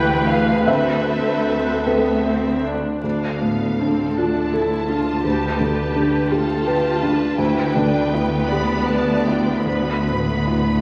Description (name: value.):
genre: cinematic.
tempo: 50-56 BPM (dotted quarters).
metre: 6/8.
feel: rubato.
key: D dorian.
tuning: A4 = 440 Hz.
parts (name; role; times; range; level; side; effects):
rich studio violin section; melody; 0.0-10.8 s; A4 to B5; -31 LUFS; equal; none.
rich symphonic violin section; second line; 0.0-10.8 s; G4 to G5; -32 LUFS; equal; none.
felt-muted upright piano; accompaniment; 0.0-10.8 s; D2 to B5; -23 LUFS; equal; none.
rich studio viola section; accompaniment; 0.0-10.8 s; E3 to B4; -27 LUFS; equal; none.
rich studio cello section; bass; 0.0-10.8 s; D2; -26 LUFS; equal; none.
rich studio double bass section; bass; 0.0-2.8 s; D2; -32 LUFS; equal; none.
room: wet scoring stage reverb, RT60 1.6 s.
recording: vinyl crackle.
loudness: -20 LUFS.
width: mono.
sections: 0.0-3.0 A section; 3.0-10.8 B section.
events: none.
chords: 0.0 Em7/D; 0.7 Amadd9/D; 3.0 Dm; 5.2 G/D; 7.4 Em7/D; 9.7 Asus2/D.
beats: | 0.67 1.86 | 3.04 4.16 | 5.25 6.33 | 7.40 8.50 | 9.66.